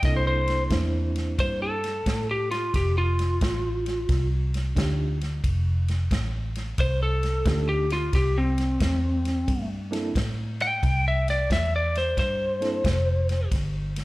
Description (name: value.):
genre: electric blues shuffle.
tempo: 89 BPM.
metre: 4/4.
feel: swing 66% on 8ths.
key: C mixolydian.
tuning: A4 = 439 Hz.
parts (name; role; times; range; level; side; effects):
bright reed electric piano; accompaniment; 0.0-12.8 s; A3 to C5; -32 LUFS; right 3 dB; overdrive, fast tremolo, slapback echo.
vintage muted fingered electric bass; bass; 0.0-14.0 s; F1 to A2; -26 LUFS; equal; none.
natural country drum kit; drums; 0.0-14.0 s; kick drum, ride cymbal, snare drum; -29 LUFS; equal; none.
lightly driven lead guitar; melody; 0.1-13.5 s; C4 to G5; -26 LUFS; left 1 dB; slapback echo.
room: small room ambience.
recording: live gig heard through the venue's PA, club reverb.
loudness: -22 LUFS.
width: side -19 dB against mid.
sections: 0.0-14.0 A section.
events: lead electric guitar solo 0.0-14.0.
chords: 0.0 C13; 2.7 F13; 8.1 C6; 13.5 N.C..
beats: | 0.03 0.70 1.38 2.06 | 2.74 3.41 4.09 4.76 | 5.44 6.11 6.79 7.46 | 8.13 8.81 9.48 10.15 | 10.82 11.50 12.17 12.84 | 13.52.